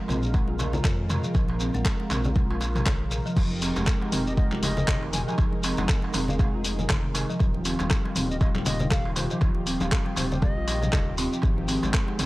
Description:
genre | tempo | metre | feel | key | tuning
afro house | 119 BPM | 4/4 | swing 57% on 16ths | F minor | A4 = 440 Hz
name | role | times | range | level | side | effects
warm analog pad | sustained chords | 0.0-12.3 s | Eb3 to Bb4 | -35 LUFS | right 1 dB | chorus, sidechain pumping
folk marimba with medium mallets | arpeggios | 0.0-12.3 s | C3 to F4 | -30 LUFS | equal | sidechain pumping, tape echo
dark detuned saw bass | bass | 0.1-12.3 s | Eb1 to F2 | -30 LUFS | equal | tube saturation, sidechain pumping
deep house drum kit | drums | 0.1-12.3 s | crash cymbal, handclaps, hi-hat, rim click, toms | -30 LUFS | left 1 dB | overdrive
congas | percussion | 0.1-12.3 s | none | -34 LUFS | left 1 dB | none
darbuka | percussion | 0.1-12.3 s | none | -37 LUFS | right 3 dB | none
shekere | percussion | 0.1-12.3 s | none | -37 LUFS | left 2 dB | none
electronic kick drum | drums | 0.3-12.1 s | none | -24 LUFS | equal | none
bright reedy bass bansuri | melody | 4.3-11.1 s | C5 to Ab5 | -37 LUFS | left 1 dB | tape echo
room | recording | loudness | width
small room ambience | dry, gritty hardware recording | -22 LUFS | side -19 dB against mid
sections
0.0-3.4 A section; 3.4-12.3 B section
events
drop 3.4-12.3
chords
0.0 Bb5; 3.4 Fm11; 7.4 Ebadd9; 11.4 Abmaj7

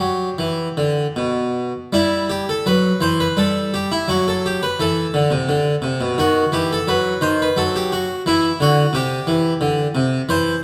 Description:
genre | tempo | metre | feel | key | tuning
classical, baroque-style suite movement for harpsichord | 86 BPM | 3/4 | uneven beats, rubato | E minor | A4 = 440 Hz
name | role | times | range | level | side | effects
harpsichord | solo | 0.0-10.6 s | B2 to C5 | -19 LUFS | equal | none
room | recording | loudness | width
wet recital hall reverb, RT60 1.5 s | none | -19 LUFS | mono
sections
0.0-1.9 A section; 1.9-10.6 A section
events
none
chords
0.0 G; 1.9 Em; 4.1 F#dim; 6.2 D#dim; 8.3 C

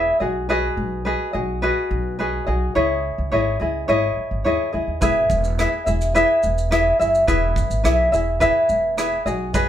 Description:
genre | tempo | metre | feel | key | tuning
acoustic pop | 106 BPM | 4/4 | straight | E major | A4 = 441 Hz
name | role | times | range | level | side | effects
tenor ukulele | accompaniment | 0.0-9.7 s | E4 to E5 | -19 LUFS | equal | none
upright bass | bass | 0.0-9.7 s | E1 to D#2 | -24 LUFS | equal | none
modern studio drum kit | drums | 5.0-9.7 s | kick drum, rim click, shaker | -27 LUFS | right 1 dB | none
room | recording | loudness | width
wet studio reverb, RT60 0.8 s | band playing live in one room | -18 LUFS | side -10 dB against mid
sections
0.0-9.7 A section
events
none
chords
0.2 B6; 2.8 C#madd9; 5.0 E

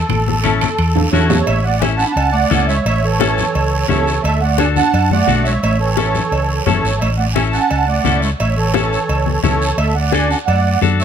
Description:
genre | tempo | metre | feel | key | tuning
latin, cumbia | 173 BPM | 4/4 | straight | A major | A4 = 439 Hz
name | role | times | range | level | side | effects
musette accordion | melody | 0.0-11.0 s | A4 to B5 | -18 LUFS | right 4 dB | slapback echo, plate reverb
hollow-body short-scale fingered electric bass | bass | 0.0-11.0 s | F#1 to F#2 | -18 LUFS | equal | none
congas | percussion | 0.1-11.0 s | none | -21 LUFS | left 10 dB | none
guiro | percussion | 0.1-11.0 s | none | -28 LUFS | right 5 dB | none
timbales and cowbell | percussion | 0.1-10.7 s | none | -24 LUFS | right 6 dB | none
clean electric guitar | accompaniment | 0.4-11.0 s | C#4 to A4 | -20 LUFS | left 9 dB | none
breathy clarinet | second line | 1.1-11.0 s | E3 to D4 | -23 LUFS | right 4 dB | none
room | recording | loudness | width
light reverb | close, detailed microphones | -13 LUFS | side -8 dB against mid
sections
0.0-1.5 A section; 1.5-11.0 B section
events
drum fill 0.1-1.5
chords
0.0 A; 4.2 D; 5.6 A; 9.8 D

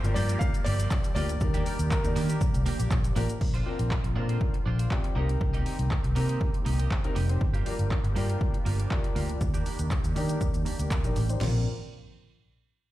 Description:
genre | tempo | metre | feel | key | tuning
dance-pop | 120 BPM | 4/4 | straight | Bb major | A4 = 439 Hz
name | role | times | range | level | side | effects
clear baby grand piano | melody | 0.0-2.6 s | Bb4 to F5 | -36 LUFS | left 1 dB | tape echo
warm concert grand piano | accompaniment | 0.0-11.6 s | Bb3 to C5 | -36 LUFS | left 3 dB | low-pass filter
filtered supersaw swell | sustained chords | 0.0-11.6 s | D3 to D5 | -39 LUFS | right 1 dB | phaser, sidechain pumping, low-pass filter
twelve-string electric guitar | riff | 0.0-11.6 s | Bb3 to C5 | -39 LUFS | right 9 dB | lush chorus, low-pass filter
vintage muted fingered electric bass | bass | 0.0-11.6 s | F1 to Eb3 | -27 LUFS | equal | sidechain pumping
deep house drum kit | drums | 0.0-11.5 s | crash cymbal, handclaps, hi-hat, kick drum, shaker, snare drum, toms | -29 LUFS | equal | overdrive
room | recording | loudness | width
little or no reverb | played on a big sound system in a bare room, large studio reverb | -25 LUFS | side -15 dB against mid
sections
0.0-3.4 A section; 3.4-11.4 B section; 11.4-12.9 C section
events
filter sweep 3.4-11.4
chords
0.0 Gm7; 1.4 Ebmaj7; 2.4 Bb6; 3.4 Bbadd9; 5.2 Cm7; 7.4 Gm7; 9.4 Ebmaj7; 11.4 Bbadd9

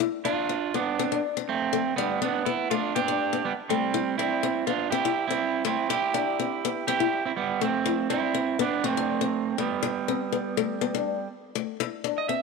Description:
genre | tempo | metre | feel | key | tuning
highlife | 122 BPM | 4/4 | straight | unclear | A4 = 442 Hz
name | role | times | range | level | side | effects
picked acoustic archtop guitar | accompaniment | 0.0-12.4 s | A3 to E4 | -28 LUFS | left 16 dB | none
electric guitar at the edge of break-up | melody | 0.2-12.4 s | G3 to E5 | -26 LUFS | right 8 dB | spring reverb
room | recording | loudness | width
light reverb, studio ambience | 1960s-style stereo with parts hard left and right | -24 LUFS | side -4 dB against mid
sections
0.0-11.8 A section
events
none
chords
0.0 F6; 2.0 G; 3.9 Am11/G; 9.8 G; 11.8 Amadd11 (rootless)

